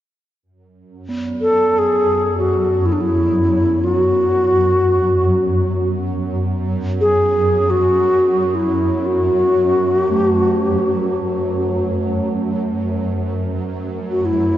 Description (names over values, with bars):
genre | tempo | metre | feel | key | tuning
world meditative, free-time meditation music | free time | none | none | F# minor | A4 = 440 Hz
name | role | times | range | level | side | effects
shimmering ambient pad | drone | 1.1-14.6 s | F#2 | -21 LUFS | right 1 dB | chorus, built-in reverb
quartz singing bowl | texture | 1.1-14.6 s | A3 to B3 | -27 LUFS | right 2 dB | none
hollow xiao | melody | 1.4-14.6 s | D4 to A4 | -16 LUFS | left 1 dB | ping-pong delay
room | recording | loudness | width
moderate huge ambient reverb, RT60 4.5 s | worn, warbling old tape, cassette tape, warbly pitch drift, nothing above 7.5 kHz | -15 LUFS | side -12 dB against mid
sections
0.5-14.6 A section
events
none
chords
none